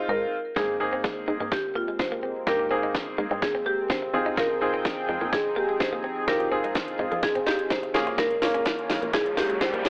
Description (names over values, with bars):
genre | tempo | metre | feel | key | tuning
dance-pop | 126 BPM | 4/4 | straight | unclear | A4 = 439 Hz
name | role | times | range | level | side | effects
marimba with medium hard mallets | melody | 0.0-9.9 s | F4 to C5 | -31 LUFS | equal | none
clear concert grand piano | accompaniment | 0.0-9.1 s | Ab3 to Bb4 | -30 LUFS | equal | sidechain pumping
plucky analog bass | bass | 0.1-9.2 s | Bb1 to Ab2 | -36 LUFS | equal | sidechain pumping
chorused pulse-width pad | sustained chords | 0.6-9.9 s | F3 to G5 | -36 LUFS | equal | sidechain pumping
direct-recorded clean electric guitar | riff | 0.6-9.9 s | Ab3 to F4 | -36 LUFS | equal | lush chorus
house drum kit | drums | 0.6-9.9 s | hi-hat, kick drum, snare drum | -31 LUFS | equal | overdrive
riser | sound effects | 8.9-9.9 s | none | -37 LUFS | equal | none
room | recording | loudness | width
light reverb, digital ambience | high-pass filter, telephone sound | -26 LUFS | mono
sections
0.6-9.9 A section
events
break 0.0-0.6; build-up 0.6-9.9; drum fill 0.6-9.9; riser 8.9-9.9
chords
0.0 Ab; 0.6 Abadd9; 4.1 Fm7; 7.9 Bbm7